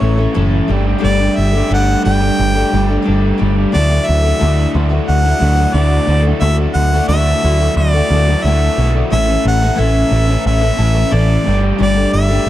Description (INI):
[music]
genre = folk rock and heartland rock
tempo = 89 BPM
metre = 4/4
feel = straight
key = D major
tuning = A4 = 440 Hz
[part]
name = bright harmonica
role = melody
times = 0.0-12.5 s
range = C#5 to G5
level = -18 LUFS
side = equal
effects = analog delay
[part]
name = picked twelve-string acoustic guitar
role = accompaniment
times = 0.0-12.5 s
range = A2 to A4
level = -20 LUFS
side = left 4 dB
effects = none
[part]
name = crunchy overdriven guitar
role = riff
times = 0.0-12.5 s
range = A2 to A4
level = -19 LUFS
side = right 1 dB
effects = none
[part]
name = deep dub picked electric bass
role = bass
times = 0.0-12.5 s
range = F#1 to D2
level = -14 LUFS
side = equal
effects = none
[sound]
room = studio ambience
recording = dark, warm production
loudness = -11 LUFS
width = side -13 dB against mid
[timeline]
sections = 0.0-12.5 A section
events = none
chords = 0.0 A; 0.7 Gsus2; 3.7 Dadd9; 9.1 A; 11.5 Gsus2